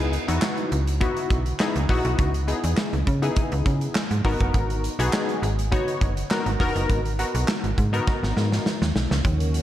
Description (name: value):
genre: early-eighties boogie funk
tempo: 102 BPM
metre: 4/4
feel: straight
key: unclear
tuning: A4 = 440 Hz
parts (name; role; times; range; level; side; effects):
- funky polysynth comp; accompaniment; 0.0-8.7 s; B3 to C#5; -26 LUFS; left 2 dB; chorus, slapback echo
- slap-like FM bass; bass; 0.0-9.6 s; E1 to C#3; -24 LUFS; equal; none
- modern studio drum kit; drums; 0.1-9.6 s; handclaps, hi-hat, kick drum, snare drum; -25 LUFS; equal; none
- string machine, violins; sustained chords; 9.2-9.6 s; D#3 to F#4; -29 LUFS; right 1 dB; ensemble chorus
room: moderate lush hall reverb, RT60 1.9 s, studio reverb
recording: big arena sound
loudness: -21 LUFS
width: side -12 dB against mid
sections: 0.0-9.2 A section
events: drum fill 8.1-9.2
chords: 0.0 C#m9; 4.2 G#m9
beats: 0.42 1.01 1.60 | 2.19 2.78 3.37 3.95 | 4.54 5.13 5.72 6.31 | 6.89 7.48 8.07 8.66 | 9.25